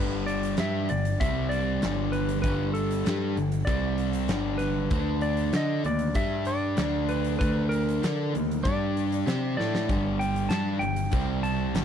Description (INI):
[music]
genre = classic rock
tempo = 97 BPM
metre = 4/4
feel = straight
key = G major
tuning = A4 = 440 Hz
[part]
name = clean lap steel guitar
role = melody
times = 0.0-11.8 s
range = A4 to A5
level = -32 LUFS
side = left 1 dB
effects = none
[part]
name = overdriven electric guitar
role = riff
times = 0.0-11.8 s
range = G2 to D5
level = -32 LUFS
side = left 14 dB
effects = none
[part]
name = overdriven semi-hollow guitar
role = riff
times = 0.0-11.8 s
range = G2 to D5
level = -31 LUFS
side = right 11 dB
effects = none
[part]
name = growling picked electric bass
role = bass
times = 0.0-11.8 s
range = G1 to D3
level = -30 LUFS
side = equal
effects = overdrive
[part]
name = huge arena drum kit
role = drums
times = 0.3-11.8 s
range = hi-hat, kick drum, snare drum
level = -32 LUFS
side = equal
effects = none
[sound]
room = little or no reverb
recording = none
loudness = -24 LUFS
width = side -8 dB against mid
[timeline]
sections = 0.0-11.8 A section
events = drum fill 9.6-9.9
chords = 0.0 G5; 1.2 C5; 1.8 Gsus2; 3.7 C5; 4.3 G; 4.9 D5; 5.6 Eb5; 6.2 G5; 6.8 D5; 8.0 Eb5; 8.7 G5; 9.3 C69; 9.9 G5; 11.1 C5